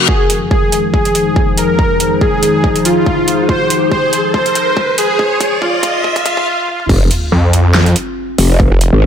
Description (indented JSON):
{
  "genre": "heavy wobble dubstep",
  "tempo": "141 BPM",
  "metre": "4/4",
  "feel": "swing 55% on 16ths, half-time",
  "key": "F minor",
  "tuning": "A4 = 440 Hz",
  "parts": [
    { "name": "lush unison pad", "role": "sustained chords", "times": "0.0-6.4 s", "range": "F2 to Ab3", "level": "-22 LUFS", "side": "left 1 dB", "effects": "chorus, sidechain pumping" },
    { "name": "reverse cymbal, riser and sub drop", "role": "sound effects", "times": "0.0-8.6 s", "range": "none", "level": "-19 LUFS", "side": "equal", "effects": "none" },
    { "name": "warbly tape-like pad", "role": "texture", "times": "0.0-9.1 s", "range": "F3 to C5", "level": "-20 LUFS", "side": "left 3 dB", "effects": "chorus, built-in reverb, sidechain pumping" },
    { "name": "soft supersaw", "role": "melody", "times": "0.1-6.8 s", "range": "F4 to C5", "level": "-15 LUFS", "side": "equal", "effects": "dub echo" },
    { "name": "electronic kick drum", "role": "drums", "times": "0.1-8.7 s", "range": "none", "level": "-16 LUFS", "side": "equal", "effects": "overdrive" },
    { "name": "big-room dance drum kit", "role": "drums", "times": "0.3-8.9 s", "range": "crash cymbal, hi-hat, snare drum, toms", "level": "-18 LUFS", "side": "right 1 dB", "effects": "overdrive" },
    { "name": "growl bass", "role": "bass", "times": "6.9-9.1 s", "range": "F1 to Ab1", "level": "-10 LUFS", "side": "equal", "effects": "chorus, overdrive" },
    { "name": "snarling distorted saw bass", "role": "bass", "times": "7.3-8.9 s", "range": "F1 to F2", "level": "-10 LUFS", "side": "equal", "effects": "overdrive" }
  ],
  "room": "light reverb",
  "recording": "high-pass filter",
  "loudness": "-10 LUFS",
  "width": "side -8 dB against mid",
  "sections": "0.1-6.9 A section; 6.9-9.1 B section",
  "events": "build-up 0.1-6.9; riser 0.1-6.5; filter sweep on analog synth pad 0.1-6.9; filter sweep 0.1-6.9; drum fill 3.5-6.5, 6.7; break 6.5-6.9; drop 6.9-9.1; impact 6.9-8.6",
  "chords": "0.1 Fm7; 6.9 F5",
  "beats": "| 0.09 0.51 0.94 1.36 | 1.79 2.21 2.64 3.06 | 3.49 3.92 4.34 4.77 | 5.19 5.62 6.04 6.47 | 6.89 7.32 7.75 8.17 | 8.60 9.02"
}